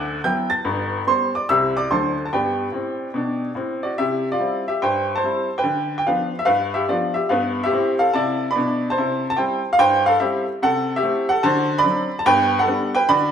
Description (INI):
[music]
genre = jazz, stride piano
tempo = 145 BPM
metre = 4/4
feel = swing 65% on 8ths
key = G major, C major from 4.0 s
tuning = A4 = 445 Hz
[part]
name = bright upright piano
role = solo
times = 0.0-13.3 s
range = G1 to A6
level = -18 LUFS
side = equal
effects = none
[sound]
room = wet stone room reverb, RT60 1.4 s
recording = band playing live in one room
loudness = -18 LUFS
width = side -8 dB against mid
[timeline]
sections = 0.0-4.0 A section; 4.0-13.3 B section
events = none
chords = 0.0 D69; 0.7 G; 1.5 C; 1.9 D7; 2.3 G; 4.0 C; 5.6 G7/D; 7.3 G; 9.0 C; 10.6 Am/C; 11.4 D7; 12.3 G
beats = 0.25 | 0.66 1.08 1.49 1.91 | 2.33 2.74 3.16 3.57 | 3.99 4.40 4.82 5.23 | 5.65 6.06 6.48 6.89 | 7.30 7.72 8.13 8.55 | 8.96 9.38 9.79 10.21 | 10.62 11.03 11.45 11.86 | 12.28 12.69 13.10